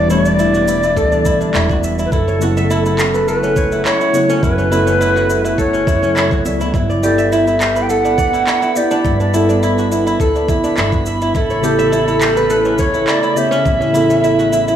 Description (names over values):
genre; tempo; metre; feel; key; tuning
organic downtempo; 104 BPM; 4/4; straight; unclear; A4 = 440 Hz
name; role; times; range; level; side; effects
mellow Native American-style cedar flute; melody; 0.0-14.8 s; A4 to G5; -17 LUFS; equal; tape echo
mellow tine electric piano; accompaniment; 0.0-14.8 s; B2 to D5; -20 LUFS; left 1 dB; medium stereo tremolo, sidechain pumping, tape echo
warm analog pad; sustained chords; 0.0-14.8 s; C#3 to F#4; -22 LUFS; right 2 dB; chorus, sidechain pumping
kora; arpeggios; 0.0-14.8 s; C#4 to E5; -18 LUFS; equal; tape echo
upright bass; bass; 0.0-14.8 s; E1 to F#2; -21 LUFS; equal; tube saturation, sidechain pumping
electronic shaker and handclaps; drums; 0.1-14.8 s; none; -24 LUFS; equal; none
electronic kick drum; drums; 1.0-13.8 s; none; -19 LUFS; equal; none
drifting glass-harmonics texture; texture; 7.9-14.8 s; B5; -28 LUFS; right 1 dB; chorus, built-in reverb
room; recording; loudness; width
light reverb, digital ambience; dry, gritty hardware recording, small room reverb; -12 LUFS; side -10 dB against mid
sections
0.0-14.8 A section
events
none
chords
0.0 Em; 2.1 F#m; 6.7 Gmaj7; 11.4 A